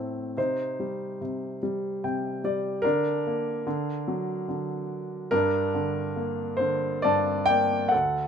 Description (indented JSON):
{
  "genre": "classical, lyrical solo piano",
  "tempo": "72 BPM",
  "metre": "3/4",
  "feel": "rubato",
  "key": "G minor",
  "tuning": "A4 = 440 Hz",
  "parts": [
    { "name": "warm grand piano", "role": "solo", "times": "0.0-8.3 s", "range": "D2 to A5", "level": "-25 LUFS", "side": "equal", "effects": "none" }
  ],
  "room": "light reverb",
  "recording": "minimal, uncompressed stereo recording",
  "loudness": "-25 LUFS",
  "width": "side -7 dB against mid",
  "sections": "0.0-7.9 A section",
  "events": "grand piano fill 1.6-2.8, 6.6-7.9",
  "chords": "0.4 Cm; 2.8 Bb/D; 3.7 D; 5.3 Gm"
}